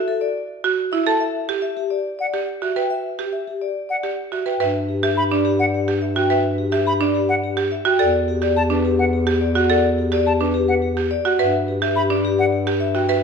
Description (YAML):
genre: classical, minimalist pattern music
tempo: 106 BPM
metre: 3/4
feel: straight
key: E minor, G major from 4.6 s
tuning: A4 = 440 Hz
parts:
  - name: vibraphone with soft mallets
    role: melody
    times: 0.0-13.2 s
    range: G4 to A5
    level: -22 LUFS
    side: left 6 dB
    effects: none
  - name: buzzing marimba with medium hard mallets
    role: arpeggios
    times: 0.6-13.2 s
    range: D4 to B4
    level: -22 LUFS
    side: right 7 dB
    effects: none
  - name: bright silver concert flute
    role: arpeggios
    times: 2.2-12.5 s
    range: F#5 to B5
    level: -25 LUFS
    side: left 1 dB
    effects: none
  - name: mellow bass clarinet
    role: bass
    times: 4.6-13.2 s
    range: E2 to G2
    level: -23 LUFS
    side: left 2 dB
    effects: none
room: wet recital hall reverb, RT60 1.6 s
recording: none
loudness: -18 LUFS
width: side -6 dB against mid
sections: 0.0-4.6 A section; 4.6-13.2 B section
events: none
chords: 0.0 D (rootless); 1.2 Em7; 4.6 Gmaj7; 8.0 Em9; 11.4 Gmaj7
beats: 0.07 0.64 | 1.21 1.77 2.34 | 2.90 3.47 4.04 | 4.60 5.17 5.74 | 6.30 6.87 7.43 | 8.00 8.57 9.13 | 9.70 10.26 10.83 | 11.40 11.96 12.53 | 13.09